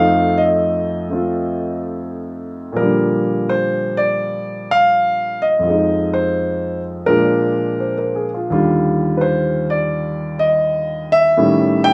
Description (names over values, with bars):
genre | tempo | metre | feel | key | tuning
solo jazz | 84 BPM | 4/4 | swing 67% on 8ths | Bb major, Eb major from 8.5 s | A4 = 441 Hz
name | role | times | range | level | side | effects
warm concert grand piano | solo | 0.0-11.9 s | Eb2 to G5 | -18 LUFS | equal | none
room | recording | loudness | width
light reverb | none | -18 LUFS | mono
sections
0.0-8.5 A section; 8.5-11.9 B section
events
none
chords
0.0 F7; 2.8 Bb6; 5.6 Fm7; 7.1 Bb7; 8.5 Ebmaj9; 11.4 A7#11